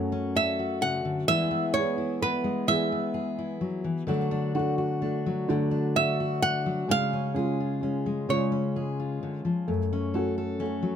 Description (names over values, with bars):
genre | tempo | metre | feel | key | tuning
acoustic folk-pop ballad | 43 BPM (dotted quarters) | 6/8 | straight | F# minor | A4 = 439 Hz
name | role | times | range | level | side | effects
fingerpicked steel-string acoustic guitar | accompaniment | 0.0-11.0 s | F#2 to A4 | -29 LUFS | left 3 dB | none
felt-muted upright piano | arpeggios | 0.0-11.0 s | E3 to G#4 | -31 LUFS | right 1 dB | tape echo
flamenco guitar | melody | 0.4-9.3 s | B4 to F#5 | -27 LUFS | right 2 dB | none
room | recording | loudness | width
little or no reverb | close, detailed microphones | -25 LUFS | side -8 dB against mid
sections
0.0-11.0 A section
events
none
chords
0.0 F#m; 1.3 E; 4.1 D; 6.9 C#; 9.7 F#m